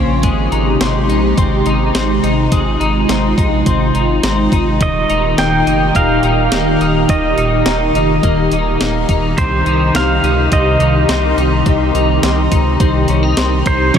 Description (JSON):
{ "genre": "dream pop", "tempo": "105 BPM", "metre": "4/4", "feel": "straight", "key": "unclear", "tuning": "A4 = 440 Hz", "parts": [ { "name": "hollow soft pad", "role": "sustained chords", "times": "0.0-14.0 s", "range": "Bb2 to G4", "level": "-16 LUFS", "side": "equal", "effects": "ensemble chorus" }, { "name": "twelve-string electric guitar", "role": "arpeggios", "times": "0.0-14.0 s", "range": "Bb2 to Eb4", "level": "-19 LUFS", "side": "left 4 dB", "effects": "ensemble chorus, ping-pong delay" }, { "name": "saturated sub bass", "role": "bass", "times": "0.0-14.0 s", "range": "Eb1 to Db2", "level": "-18 LUFS", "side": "equal", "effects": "none" }, { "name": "clean 12-bit digital drum machine", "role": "drums", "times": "0.2-14.0 s", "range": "hi-hat, kick drum, ride cymbal, snare drum", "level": "-20 LUFS", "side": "equal", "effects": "none" }, { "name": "pedal steel guitar", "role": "melody", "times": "4.8-13.9 s", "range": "C5 to G5", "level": "-18 LUFS", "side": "right 1 dB", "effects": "ping-pong delay" }, { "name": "clean electric guitar", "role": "accompaniment", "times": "13.9-14.0 s", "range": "Db3 to F3", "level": "-10 LUFS", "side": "right 4 dB", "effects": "tremolo, lush chorus" } ], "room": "wet huge ambient reverb, RT60 7.4 s", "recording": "dreamy mix soaked in reverb", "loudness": "-11 LUFS", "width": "side -8 dB against mid", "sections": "0.0-13.9 A section", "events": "none", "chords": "0.2 Abmaj7; 4.8 Eb; 9.4 Cm" }